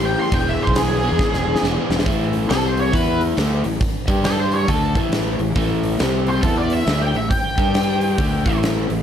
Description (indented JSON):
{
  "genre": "blues rock power trio and southern rock",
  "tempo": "137 BPM",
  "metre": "4/4",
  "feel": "swing 62% on 8ths",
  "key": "unclear",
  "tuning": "A4 = 440 Hz",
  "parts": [
    { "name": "octave-fuzz lead guitar", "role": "melody", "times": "0.0-8.6 s", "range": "G#4 to C6", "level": "-24 LUFS", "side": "right 1 dB", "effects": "wah, distortion, plate reverb" },
    { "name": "overdriven electric guitar", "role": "riff", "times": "0.0-9.0 s", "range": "A2 to G#4", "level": "-22 LUFS", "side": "left 2 dB", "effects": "none" },
    { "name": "fuzz fingered electric bass", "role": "bass", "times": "0.0-9.0 s", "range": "E1 to G2", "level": "-22 LUFS", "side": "equal", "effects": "overdrive" },
    { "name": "huge arena drum kit", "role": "drums", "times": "0.3-9.0 s", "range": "hi-hat, kick drum, snare drum", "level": "-22 LUFS", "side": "equal", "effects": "none" }
  ],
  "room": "light reverb",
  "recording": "none",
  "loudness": "-16 LUFS",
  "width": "side -9 dB against mid",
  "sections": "0.0-2.1 A section; 2.1-9.0 B section",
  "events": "lead electric guitar solo 0.0-2.1; drum fill 1.2-2.1",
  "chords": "0.3 E7; 2.1 A5; 2.5 C5; 2.9 E5; 3.4 A5; 4.0 G5; 4.7 A5; 6.0 C5; 6.4 E5; 6.9 A5; 7.5 G5; 8.2 A5"
}